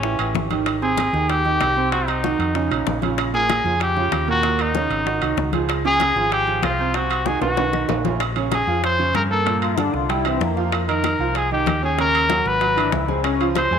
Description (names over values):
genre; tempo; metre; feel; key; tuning
latin, salsa; 191 BPM; 4/4; straight; unclear; A4 = 437 Hz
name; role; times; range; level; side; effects
clear trumpet; melody; 0.0-13.8 s; Db4 to C5; -21 LUFS; left 2 dB; none
bright grand piano; accompaniment; 0.0-13.8 s; Bb2 to Db6; -24 LUFS; right 8 dB; none
hollow-body short-scale fingered electric bass; bass; 0.0-13.8 s; Ab1 to G2; -26 LUFS; left 1 dB; none
bongos; percussion; 0.0-13.7 s; none; -30 LUFS; left 12 dB; none
congas; percussion; 0.0-13.8 s; none; -32 LUFS; left 11 dB; none
claves; percussion; 0.2-13.7 s; none; -38 LUFS; left 13 dB; none
timbales; percussion; 0.2-13.7 s; none; -29 LUFS; right 9 dB; none
brilliant trombone section; second line; 9.6-13.5 s; Bb3 to F4; -26 LUFS; left 9 dB; none
room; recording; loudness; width
moderate plate reverb, RT60 3.2 s; 1960s-style stereo with parts hard left and right; -18 LUFS; side -7 dB against mid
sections
0.0-8.2 A section; 8.2-13.8 B section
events
drum fill 7.3-8.2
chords
0.0 A7; 0.7 Abmaj7; 1.9 Cdim; 2.5 Bbmadd11; 3.2 Bbm7; 4.4 Eb5; 5.1 Ab7; 5.7 Dbmaj7; 6.9 Cdim; 7.6 Badd9; 8.2 Bbm9; 9.5 Gm; 10.1 C7; 10.7 F5; 12.0 Ebm7; 12.6 Ab7alt; 13.2 Dbmaj7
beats
0.04 0.35 | 0.67 0.98 1.29 1.61 | 1.92 2.24 2.55 2.86 | 3.18 3.49 3.81 4.12 | 4.43 4.75 5.06 5.38 | 5.69 6.00 6.32 6.63 | 6.95 7.26 7.58 7.89 | 8.21 8.52 8.84 9.15 | 9.46 9.78 10.09 10.41 | 10.72 11.04 11.36 11.67 | 11.99 12.30 12.62 12.93 | 13.25 13.56